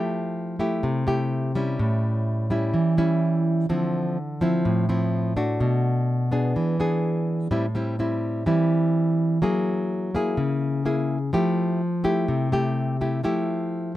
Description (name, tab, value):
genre	bossa nova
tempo	126 BPM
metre	4/4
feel	straight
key	F major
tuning	A4 = 440 Hz
part	nylon-string guitar	solo	0.0-14.0 s	A2 to Ab4	-21 LUFS	equal	none
room	light reverb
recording	close, detailed microphones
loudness	-21 LUFS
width	side -14 dB against mid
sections	0.0-14.0 A section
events	none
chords	0.0 Fmaj9; 1.8 A7; 3.7 Dm9; 5.6 Bm7; 6.6 E7; 7.5 Am7; 9.4 Gb9; 11.3 Fmaj9